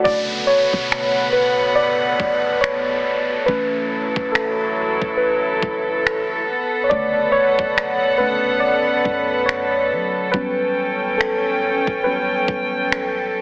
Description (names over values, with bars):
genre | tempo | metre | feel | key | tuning
contemporary R&B | 70 BPM | 4/4 | swing 58% on 16ths | B minor | A4 = 442 Hz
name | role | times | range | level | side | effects
muted felt-like synth keys | accompaniment | 0.0-13.4 s | C#3 to D5 | -19 LUFS | equal | chorus
warm chamber string section | sustained chords | 0.1-13.4 s | F#3 to G5 | -21 LUFS | equal | sidechain pumping
clean 808-style bass | bass | 0.1-13.3 s | F#1 to F#3 | -38 LUFS | equal | none
smooth R&B drum kit | drums | 0.1-13.1 s | finger snaps, kick drum | -24 LUFS | equal | none
downlifter | sound effects | 0.1-6.9 s | none | -28 LUFS | equal | none
room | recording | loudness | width
moderate plate reverb, RT60 3.5 s | heavily compressed radio sound, multiband compression, AM radio sound | -16 LUFS | side -28 dB against mid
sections
0.1-13.4 A section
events
synth keys solo 0.1-13.4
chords
0.1 Bm9; 3.5 F#m7; 6.5 Bm9; 10.3 A13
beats
| 0.05 0.91 1.77 2.62 | 3.48 4.34 5.20 6.05 | 6.91 7.77 8.62 9.48 | 10.34 11.20 12.05 12.91